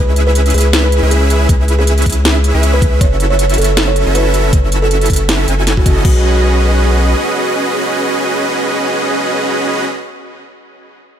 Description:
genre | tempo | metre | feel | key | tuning
future bass | 158 BPM | 4/4 | swing 55% on 16ths, half-time | B mixolydian | A4 = 439 Hz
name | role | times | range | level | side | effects
buzzing kalimba | melody | 0.0-10.5 s | F#4 to C#5 | -19 LUFS | right 2 dB | sidechain pumping, digital delay
supersaw chords | riff | 0.0-9.8 s | C#4 to G#5 | -16 LUFS | right 1 dB | sidechain pumping, tape echo
saturated sub bass | bass | 0.0-7.1 s | F#1 to C#2 | -13 LUFS | equal | sidechain pumping
trap drum kit | drums | 0.2-6.1 s | crash cymbal, hi-hat, snare drum | -17 LUFS | equal | small room ambience
electronic kick drum | drums | 1.5-6.1 s | none | -12 LUFS | equal | small room ambience
room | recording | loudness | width
little or no reverb | none | -10 LUFS | side -9 dB against mid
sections
0.0-6.0 A section; 6.0-9.1 B section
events
drop 0.0-6.0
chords
0.0 C#m7; 3.0 F#m7; 6.0 B69

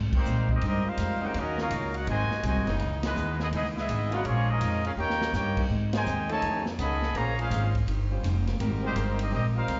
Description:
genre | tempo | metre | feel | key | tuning
jazz, big band swing | 166 BPM | 4/4 | swing 65% on 8ths | Ab major | A4 = 441 Hz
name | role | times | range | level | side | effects
picked steel-string acoustic guitar | accompaniment | 0.0-9.8 s | Ab2 to C5 | -40 LUFS | equal | none
upright bass | bass | 0.0-9.8 s | F1 to Bb2 | -31 LUFS | equal | none
brilliant trombone section | second line | 0.1-9.8 s | C3 to G4 | -38 LUFS | equal | slapback echo
swinging big-band drum kit | drums | 0.1-9.8 s | crash cymbal, hi-hat, kick drum, ride cymbal, snare drum | -37 LUFS | equal | none
clear trumpet section | melody | 0.2-9.8 s | Ab3 to Cb6 | -33 LUFS | equal | slapback echo
bright trombone section | sustained chords | 1.2-9.6 s | Db3 to C5 | -40 LUFS | equal | none
room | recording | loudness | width
small room ambience | live gig heard through the venue's PA, club reverb, nothing above 7.6 kHz | -28 LUFS | mono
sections
0.0-9.8 A section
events
band accent 0.1, 3.0, 5.9; drum fill 5.0-5.3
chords
0.0 Abmaj9; 1.3 Ebm7; 2.1 Ab7; 2.8 Dbm9; 4.3 Bbm7; 5.0 Eb7; 5.7 Abmaj7; 6.4 F7alt; 7.2 Bbm9; 7.9 Eb13; 8.6 Abmaj9

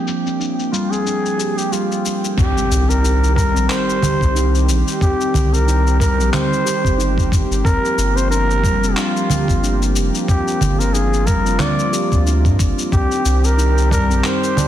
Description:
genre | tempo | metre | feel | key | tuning
organic downtempo | 91 BPM | 4/4 | swing 57% on 16ths | C minor | A4 = 440 Hz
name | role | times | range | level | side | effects
warm analog pad | sustained chords | 0.0-14.7 s | Eb3 to G5 | -25 LUFS | equal | chorus, sidechain pumping
steel tongue drum | arpeggios | 0.0-14.7 s | G3 to G4 | -22 LUFS | equal | ping-pong delay
electronic shaker, handclaps and congas | drums | 0.1-14.7 s | none | -23 LUFS | right 1 dB | studio reverb
trumpet with bucket mute | melody | 0.7-14.7 s | F4 to D5 | -21 LUFS | equal | ping-pong delay
round analog bass | bass | 2.4-14.2 s | F1 to G2 | -17 LUFS | equal | sidechain pumping
electronic kick drum | drums | 2.4-14.1 s | none | -17 LUFS | equal | studio reverb
impact | sound effects | 2.4-5.0 s | none | -25 LUFS | equal | none
tabla | percussion | 13.9-14.7 s | none | -27 LUFS | right 1 dB | none
room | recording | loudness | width
light reverb, small room reverb | dense, heavily limited modern master, low-pass filter | -14 LUFS | side -11 dB against mid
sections
0.0-2.4 A section; 2.4-14.7 B section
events
filter sweep on steel tongue drum 0.0-2.4; impact 2.4-5.0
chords
0.0 Gm7; 2.4 Cm; 7.6 Gm7; 12.9 Cm

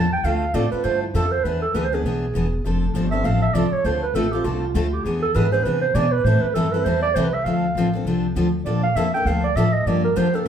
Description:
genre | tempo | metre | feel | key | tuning
acoustic string swing (jazz manouche) | 200 BPM | 4/4 | swing 60% on 8ths | A minor, D minor from 7.5 s | A4 = 439 Hz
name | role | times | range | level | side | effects
dark clarinet | second line | 0.0-10.5 s | E4 to A5 | -22 LUFS | right 4 dB | none
picked steel-string acoustic guitar | accompaniment | 0.0-10.5 s | D3 to A4 | -23 LUFS | left 2 dB | none
upright bass | bass | 0.0-10.5 s | E1 to C3 | -24 LUFS | equal | none
room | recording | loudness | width
wet studio reverb, RT60 0.8 s | heard from further back in the room | -18 LUFS | side -8 dB against mid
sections
0.0-7.5 A section; 7.5-10.5 A section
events
clarinet solo 0.0-10.5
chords
0.2 Dm7; 1.4 E7; 2.6 F6; 3.8 Dm7; 5.0 E7; 6.2 Am7; 7.5 Dm7; 8.7 Bbmaj7; 9.9 Gm7

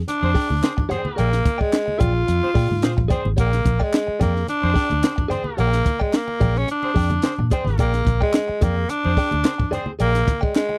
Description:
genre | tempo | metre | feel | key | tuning
funk | 109 BPM | 4/4 | straight | Bb mixolydian | A4 = 440 Hz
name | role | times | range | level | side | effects
vintage muted fingered electric bass | bass | 0.0-10.5 s | Ab1 to Bb2 | -24 LUFS | equal | none
raspy tenor saxophone | melody | 0.1-10.8 s | Ab3 to F4 | -25 LUFS | equal | none
direct-recorded clean electric guitar | accompaniment | 0.1-10.7 s | Ab4 to G5 | -32 LUFS | equal | harmonic tremolo
compact cocktail drum kit | drums | 0.1-10.7 s | hi-hat, kick drum, snare drum | -23 LUFS | equal | none
congas | percussion | 0.1-10.8 s | none | -33 LUFS | equal | none
clear horn section | second line | 0.2-9.9 s | C4 to C5 | -31 LUFS | equal | none
group handclap | percussion | 0.6-10.7 s | none | -36 LUFS | equal | none
room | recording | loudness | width
little or no reverb | dry, close 1970s-style studio recording | -20 LUFS | mono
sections
0.0-10.8 A section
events
none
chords
0.0 Bb13

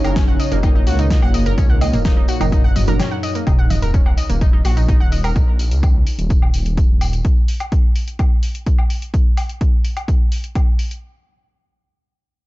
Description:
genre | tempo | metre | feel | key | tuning
melodic techno | 127 BPM | 4/4 | straight | Eb minor | A4 = 440 Hz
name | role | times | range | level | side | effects
mellow synth brass | melody | 0.0-3.4 s | Gb2 to Db4 | -25 LUFS | left 1 dB | chorus, cassette tape, sidechain pumping, digital delay
analog pluck | arpeggios | 0.0-5.3 s | Bb3 to Gb5 | -27 LUFS | equal | chorus, sidechain pumping, tape echo
filtered dub chord stab | stabs | 0.0-5.6 s | Bb2 to F4 | -27 LUFS | right 4 dB | phaser, sidechain pumping, tape echo
dark detuned saw bass | bass | 0.0-7.2 s | Eb1 to Db2 | -19 LUFS | equal | sidechain pumping
deep house drum kit | drums | 0.0-11.0 s | hi-hat, snare drum, toms, woodblock | -28 LUFS | left 1 dB | none
tambourine | percussion | 0.0-7.2 s | none | -37 LUFS | left 4 dB | none
warbly tape-like pad | texture | 0.0-7.2 s | Eb4 to F5 | -31 LUFS | equal | chorus, built-in reverb, sidechain pumping
electronic kick drum | drums | 0.2-10.7 s | none | -15 LUFS | equal | none
sub drop | sound effects | 3.5-5.4 s | none | -24 LUFS | equal | none
room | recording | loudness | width
little or no reverb | dark, warm production, nothing above 7.7 kHz | -14 LUFS | side -18 dB against mid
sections
0.0-3.5 A section; 3.5-11.0 B section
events
drop 0.0-3.5; break 3.0-3.5; impact 3.5-5.4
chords
0.0 Ebmadd9

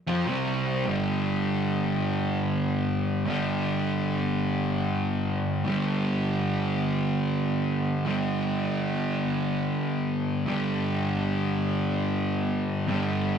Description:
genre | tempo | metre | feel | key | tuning
rock | free time | none | none | unclear | A4 = 440 Hz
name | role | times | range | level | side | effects
fuzz guitar | solo | 0.1-13.4 s | G2 to F4 | -24 LUFS | equal | distortion
room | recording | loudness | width
moderate studio reverb, RT60 0.5 s | rough rehearsal-room recording, tube saturation | -24 LUFS | side -7 dB against mid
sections
0.9-13.4 A section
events
none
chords
0.3 C5; 0.9 G5

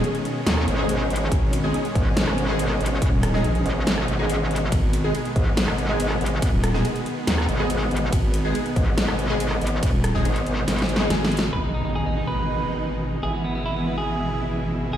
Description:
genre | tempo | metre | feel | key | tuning
heavy wobble dubstep | 141 BPM | 4/4 | half-time | G# minor | A4 = 440 Hz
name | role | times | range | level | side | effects
supersaw chords | sustained chords | 0.0-15.0 s | B2 to E4 | -27 LUFS | equal | sidechain pumping
orchestra-hit-like synth stab | stabs | 0.0-11.1 s | G#3 to G#4 | -29 LUFS | left 1 dB | built-in reverb, phaser, ping-pong delay
wobble bass | bass | 0.0-15.0 s | D#1 to A#1 | -25 LUFS | equal | chorus, overdrive
big-room dance drum kit | drums | 0.0-11.6 s | crash cymbal, hi-hat, ride cymbal, rim click, snare drum | -27 LUFS | equal | low-pass filter on hats, low-pass filter on snare, low-pass filter on toms, low-pass filter on cymbals, low-pass filter on room
metallic wobble bass | bass | 0.5-11.1 s | G#1 to D#2 | -24 LUFS | equal | chorus, overdrive
electronic kick drum | drums | 1.3-10.2 s | none | -22 LUFS | equal | none
clean electric guitar | melody | 11.5-15.0 s | B3 to B4 | -29 LUFS | right 2 dB | ping-pong delay
impact | sound effects | 11.5-13.2 s | none | -31 LUFS | equal | none
room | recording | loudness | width
moderate lush hall reverb, RT60 2.0 s | played on a big sound system in a bare room, large studio reverb | -20 LUFS | side -10 dB against mid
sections
0.0-11.5 A section; 11.5-15.0 B section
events
drop 0.0-11.5; drum fill 10.7-11.5; impact 11.5-13.2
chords
0.0 G#m; 13.2 E/G#

